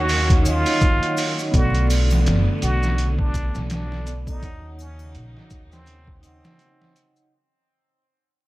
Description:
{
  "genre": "trip hop",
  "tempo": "83 BPM",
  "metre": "4/4",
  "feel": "swing 57% on 16ths",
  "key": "unclear",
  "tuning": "A4 = 441 Hz",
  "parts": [
    { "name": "trumpet with plunger mute", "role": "melody", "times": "0.0-7.2 s", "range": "C4 to F#4", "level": "-26 LUFS", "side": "right 1 dB", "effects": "tape echo" },
    { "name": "vibraphone with medium mallets", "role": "accompaniment", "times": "0.0-7.3 s", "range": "B3 to F#5", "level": "-28 LUFS", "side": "right 1 dB", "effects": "tremolo" },
    { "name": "clear studio string section", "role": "sustained chords", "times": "0.0-7.3 s", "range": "C#3 to D#4", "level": "-30 LUFS", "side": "right 1 dB", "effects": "vintage 12-bit sampler grit" },
    { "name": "upright bass", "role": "bass", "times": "0.0-6.4 s", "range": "F#1 to D#2", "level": "-22 LUFS", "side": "equal", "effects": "none" },
    { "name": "trip hop sampler-style drum kit", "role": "drums", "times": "0.1-7.2 s", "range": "hi-hat, kick drum, snare drum", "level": "-22 LUFS", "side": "equal", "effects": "overdrive" },
    { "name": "maracas and triangle", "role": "percussion", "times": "0.1-7.3 s", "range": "none", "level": "-36 LUFS", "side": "left 4 dB", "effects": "none" }
  ],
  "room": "little or no reverb",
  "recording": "vinyl crackle",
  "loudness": "-18 LUFS",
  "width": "side -18 dB against mid",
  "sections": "0.0-7.3 A section",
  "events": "fade-out 0.0-7.3",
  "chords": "0.0 D#m7; 1.5 Bm7; 4.4 D#m7",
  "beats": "0.09 0.81 | 1.53 2.26 2.98 3.70 | 4.42 5.15 5.87 6.59"
}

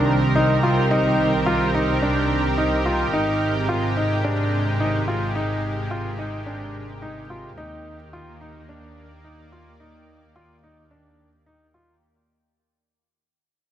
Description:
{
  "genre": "piano and strings electronica",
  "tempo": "108 BPM",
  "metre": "4/4",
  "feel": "straight",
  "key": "unclear",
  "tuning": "A4 = 439 Hz",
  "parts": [
    { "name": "lush unison pad", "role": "sustained chords", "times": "0.0-12.0 s", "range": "C3 to D5", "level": "-25 LUFS", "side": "right 2 dB", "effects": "chorus" },
    { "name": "warm grand piano", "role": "riff", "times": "0.0-11.9 s", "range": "D4 to F4", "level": "-24 LUFS", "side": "equal", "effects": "digital delay" },
    { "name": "muted chamber double bass section", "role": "bass", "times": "0.0-12.0 s", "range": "Ab1 to Eb2", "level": "-25 LUFS", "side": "equal", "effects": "none" }
  ],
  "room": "moderate recital hall reverb, RT60 1.6 s",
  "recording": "none",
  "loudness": "-19 LUFS",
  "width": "side -11 dB against mid",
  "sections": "0.0-12.0 A section",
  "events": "fade-out 0.0-12.0",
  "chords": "0.0 Cm7; 3.1 Abmaj9; 7.6 Ebmaj7",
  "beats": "0.35 | 0.91 1.46 2.02 2.58 | 3.13 3.69 4.24 4.80 | 5.35 5.91 6.46 7.02 | 7.58 8.13 8.69 9.24 | 9.80 10.35 10.91 11.46"
}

